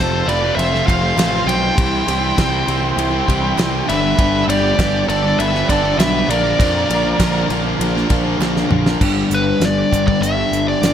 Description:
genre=classic rock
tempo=100 BPM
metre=4/4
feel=straight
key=unclear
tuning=A4 = 441 Hz
part: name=nasal lead guitar with a parked wah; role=melody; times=0.0-10.9 s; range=B4 to G5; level=-20 LUFS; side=right 1 dB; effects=overdrive
part: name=octave-fuzz lead guitar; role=second line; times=0.0-7.5 s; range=G4 to C5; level=-25 LUFS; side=right 1 dB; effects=distortion
part: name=bright tonewheel organ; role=sustained chords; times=0.0-9.0 s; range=Bb3 to A4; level=-32 LUFS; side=equal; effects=none
part: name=distorted electric guitar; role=riff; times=0.0-10.9 s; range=F2 to E4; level=-22 LUFS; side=left 7 dB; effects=distortion
part: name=overdriven semi-hollow guitar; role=riff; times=0.0-10.9 s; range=F2 to Bb4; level=-22 LUFS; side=right 6 dB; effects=none
part: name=fuzz picked electric bass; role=bass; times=0.0-10.9 s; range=F1 to F2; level=-21 LUFS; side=equal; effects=overdrive
part: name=damped 70s drum kit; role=drums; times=0.3-10.9 s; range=crash cymbal, hi-hat, kick drum, ride cymbal, snare drum, toms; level=-21 LUFS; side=equal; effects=none
part: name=group handclap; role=percussion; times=0.9-8.6 s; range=none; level=-33 LUFS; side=right 6 dB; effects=none
room=light reverb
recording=none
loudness=-14 LUFS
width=side -9 dB against mid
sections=0.0-9.0 A section; 9.0-10.9 B section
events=drum fill 8.4-9.0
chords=0.0 F; 1.8 C; 3.9 G; 6.3 Bb; 9.0 G

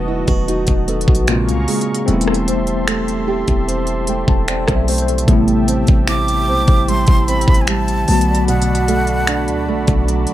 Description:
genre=contemporary R&B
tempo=75 BPM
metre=4/4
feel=straight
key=unclear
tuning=A4 = 440 Hz
part: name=mellow tine electric piano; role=accompaniment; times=0.0-10.3 s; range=C3 to A5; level=-21 LUFS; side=left 4 dB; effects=medium stereo tremolo
part: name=warm analog pad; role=sustained chords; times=0.0-10.3 s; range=F#4 to C#6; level=-26 LUFS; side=left 1 dB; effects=chorus
part: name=fingerpicked steel-string acoustic guitar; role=arpeggios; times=0.0-10.3 s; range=A2 to G4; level=-21 LUFS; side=right 6 dB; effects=digital delay
part: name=warm 808-style bass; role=bass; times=0.0-10.3 s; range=E1 to D2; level=-19 LUFS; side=equal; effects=none
part: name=trap drum kit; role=drums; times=0.3-10.3 s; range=finger snaps, hi-hat, kick drum, rim click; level=-17 LUFS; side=equal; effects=overdrive
part: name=breathy jazz flute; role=melody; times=6.1-10.0 s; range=F#5 to D6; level=-20 LUFS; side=right 1 dB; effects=digital delay
room=little or no reverb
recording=none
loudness=-13 LUFS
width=side -13 dB against mid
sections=0.0-5.3 A section; 5.3-10.3 B section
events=tine electric piano fill 3.7-5.3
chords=0.0 B7/E; 1.3 A#m7; 2.1 Am7/E; 5.3 Am7; 8.1 Bm7

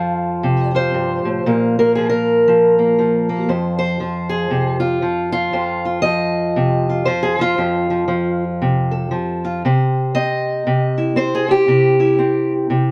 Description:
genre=acoustic country blues, solo or duo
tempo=117 BPM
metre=4/4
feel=swing 60% on 8ths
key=F major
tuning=A4 = 440 Hz
part: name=fingerpicked steel-string acoustic guitar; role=solo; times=0.0-12.9 s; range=F2 to F5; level=-17 LUFS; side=equal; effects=none
room=light reverb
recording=none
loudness=-17 LUFS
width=mono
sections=0.0-12.9 A section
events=none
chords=0.0 F; 1.4 Bb5; 3.5 F5; 9.6 C

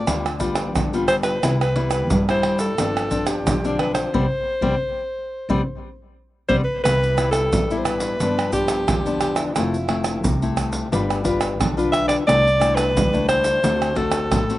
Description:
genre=samba and choro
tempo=88 BPM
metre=4/4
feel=straight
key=C major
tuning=A4 = 442 Hz
part: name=clear alto saxophone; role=melody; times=0.0-14.6 s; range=D4 to E5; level=-22 LUFS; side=equal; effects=slapback echo
part: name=nylon-string guitar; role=accompaniment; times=0.0-14.6 s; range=G2 to B4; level=-24 LUFS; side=left 3 dB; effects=none
part: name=upright bass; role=bass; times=0.1-14.6 s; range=E1 to G2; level=-26 LUFS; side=equal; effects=none
part: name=tube shaker, surdo, pandeiro and tamborim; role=percussion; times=0.1-14.6 s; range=none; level=-24 LUFS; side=right 2 dB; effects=none
room=little or no reverb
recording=recorded outdoors, with no room sound, nothing above 10.7 kHz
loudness=-18 LUFS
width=side -15 dB against mid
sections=0.0-6.9 A section; 6.9-14.6 A section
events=band accent 4.1-6.9; drum fill 6.3-6.9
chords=0.1 G7/D; 1.4 Cmaj7; 2.8 G7sus4; 4.1 C5; 6.9 Cmaj7; 8.2 G7; 9.6 Fmaj7; 10.9 G7; 12.3 C69; 13.6 D7

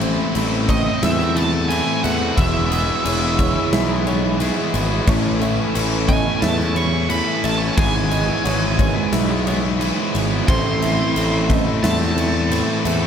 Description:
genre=post-rock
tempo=89 BPM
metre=4/4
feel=straight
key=unclear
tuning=A4 = 440 Hz
part: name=hand-pumped harmonium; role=sustained chords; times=0.0-13.1 s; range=G#3 to C#5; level=-30 LUFS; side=left 1 dB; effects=none
part: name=felt-muted upright piano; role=arpeggios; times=0.0-13.1 s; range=C5 to D#6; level=-31 LUFS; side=right 4 dB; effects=tape echo
part: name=twelve-string electric guitar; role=arpeggios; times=0.0-13.1 s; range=E3 to C#5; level=-28 LUFS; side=left 4 dB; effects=none
part: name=cranked stack guitar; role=riff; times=0.0-13.1 s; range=G#2 to E4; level=-25 LUFS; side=left 11 dB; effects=overdrive
part: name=crunchy overdriven guitar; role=riff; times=0.0-13.1 s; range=G#2 to E4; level=-24 LUFS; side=right 10 dB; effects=none
part: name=fuzz picked electric bass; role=bass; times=0.0-13.1 s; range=E1 to E2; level=-22 LUFS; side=equal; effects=overdrive
part: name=huge arena drum kit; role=drums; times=0.0-13.0 s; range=crash cymbal, kick drum, snare drum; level=-23 LUFS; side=equal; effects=none
part: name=octave-fuzz lead guitar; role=melody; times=0.7-13.1 s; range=D#5 to C#6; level=-25 LUFS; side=right 2 dB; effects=distortion, tape echo
room=light reverb, small room reverb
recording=faint mains hum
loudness=-16 LUFS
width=side -8 dB against mid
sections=0.0-13.1 A section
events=none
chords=0.0 Am; 2.4 E6; 5.1 Aadd9; 7.8 E6/G#; 10.5 Am

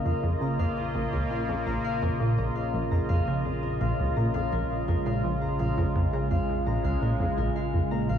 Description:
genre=ambient, sequencer-driven space music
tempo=84 BPM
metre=4/4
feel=straight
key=Bb minor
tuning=A4 = 436 Hz
part: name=sweeping resonant pad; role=sustained chords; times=0.0-8.2 s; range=Db3 to F4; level=-30 LUFS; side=equal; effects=chorus
part: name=concert harp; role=arpeggios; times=0.0-8.2 s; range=Ab4 to Bb5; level=-35 LUFS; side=left 6 dB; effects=auto-pan, tape echo
part: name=analog drone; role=bass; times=0.3-8.2 s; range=Bb1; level=-34 LUFS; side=equal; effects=chorus
part: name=bubbling stepped-filter texture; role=texture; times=0.0-8.2 s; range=Eb5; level=-40 LUFS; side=right 4 dB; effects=chorus, built-in reverb
part: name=plucky analog bass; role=riff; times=0.1-8.2 s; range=Bb1 to Db3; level=-28 LUFS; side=equal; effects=wide subtle chorus, cassette tape, tape echo
room=moderate plate reverb, RT60 3.9 s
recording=dark, warm production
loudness=-25 LUFS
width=side -9 dB against mid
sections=0.0-8.2 A section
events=none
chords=0.0 Bbm

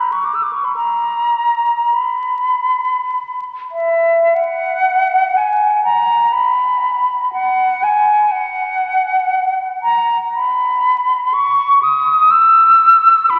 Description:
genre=classical, free, expressive piece for unaccompanied flute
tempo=41-63 BPM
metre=3/4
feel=rubato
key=B major from 4.4 s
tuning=A4 = 444 Hz
part: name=concert flute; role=solo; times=0.0-13.4 s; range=E5 to E6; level=-15 LUFS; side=equal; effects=none
room=wet cathedral reverb, RT60 4.4 s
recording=very old 78 rpm record, vinyl crackle, nothing above 10.4 kHz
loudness=-15 LUFS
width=mono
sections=0.0-4.4 A section; 4.4-13.4 B section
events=none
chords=none

